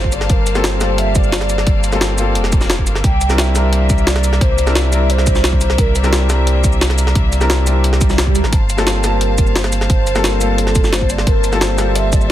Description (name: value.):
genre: liquid drum and bass.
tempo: 175 BPM.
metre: 4/4.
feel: straight.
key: G dorian.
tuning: A4 = 439 Hz.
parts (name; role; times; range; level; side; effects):
hollow clarinet-like synth lead; melody; 0.0-6.3, 9.0-12.3 s; A4 to G5; -22 LUFS; right 1 dB; lush chorus, ping-pong delay.
clear grand piano; accompaniment; 0.0-12.3 s; G3 to A5; -21 LUFS; left 3 dB; ping-pong delay.
rich studio string section; sustained chords; 0.0-12.3 s; Bb3 to A5; -25 LUFS; left 3 dB; none.
warm sub bass; bass; 0.0-12.3 s; F1 to D2; -17 LUFS; equal; none.
electronic kick drum; drums; 0.0-12.2 s; none; -16 LUFS; equal; none.
jungle sampler-style drum kit; drums; 0.1-12.3 s; hi-hat, shaker, snare drum; -19 LUFS; equal; none.
swell; sound effects; 8.0-8.5 s; none; -23 LUFS; right 6 dB; none.
room: digital ambience.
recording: dense, heavily limited modern master.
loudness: -12 LUFS.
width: side -12 dB against mid.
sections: 0.0-12.3 A section.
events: swell 8.0-8.5.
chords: 0.0 Gm11; 3.0 C9; 8.5 Gm11.